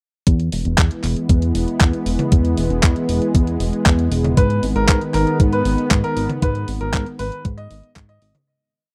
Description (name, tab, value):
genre	italo disco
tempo	117 BPM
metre	4/4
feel	straight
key	G# minor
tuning	A4 = 440 Hz
part	lush unison pad	sustained chords	0.6-8.4 s	D#3 to B3	-25 LUFS	equal	chorus
part	chorused synth bass	bass	0.3-8.3 s	E1 to G#2	-23 LUFS	equal	tube saturation
part	clean 12-bit digital drum machine	drums	0.3-8.4 s	handclaps, hi-hat, toms	-26 LUFS	equal	none
part	electronic kick drum	drums	0.3-8.1 s	none	-18 LUFS	equal	none
part	clear grand piano	melody	4.4-8.3 s	A#4 to D#5	-26 LUFS	equal	tape echo
room	little or no reverb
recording	dry, close 1970s-style studio recording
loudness	-18 LUFS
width	mono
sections	0.3-8.5 verse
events	fade-out 5.7-8.5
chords	0.3 E; 4.4 G#m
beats	| 0.27 0.78 1.29 1.81 | 2.32 2.83 3.35 3.86 | 4.37 4.88 5.40 5.91 | 6.42 6.94 7.45 7.96